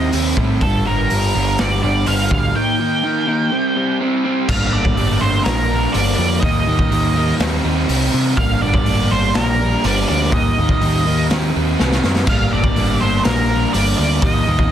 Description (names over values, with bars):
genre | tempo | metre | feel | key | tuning
quiet-loud alternative rock | 124 BPM | 4/4 | straight | G minor | A4 = 440 Hz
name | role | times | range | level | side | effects
octave-fuzz lead guitar | melody | 0.0-14.7 s | A4 to G5 | -21 LUFS | right 2 dB | distortion, plate reverb
picked steel-string acoustic guitar | arpeggios | 0.0-0.6 s | Eb3 to G4 | -29 LUFS | left 3 dB | plate reverb, digital delay
raw garage guitar | riff | 0.0-14.7 s | G2 to Eb4 | -19 LUFS | equal | overdrive
growling picked electric bass | bass | 0.0-14.7 s | G1 to C3 | -20 LUFS | equal | overdrive
raw garage drum kit | drums | 0.1-14.7 s | crash cymbal, hi-hat, kick drum, snare drum | -20 LUFS | equal | none
room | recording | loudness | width
light reverb | dense, heavily limited modern master | -14 LUFS | side -10 dB against mid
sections
0.0-4.5 A section; 4.5-14.7 B section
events
drum fill 11.8-12.3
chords
0.0 Cm/Eb; 0.6 Gm; 2.6 Eb; 3.5 C5; 4.5 Gm; 6.4 Eb; 7.4 Cm/Eb; 8.4 Gm; 10.3 Eb; 11.3 Cm/Eb; 12.3 Gm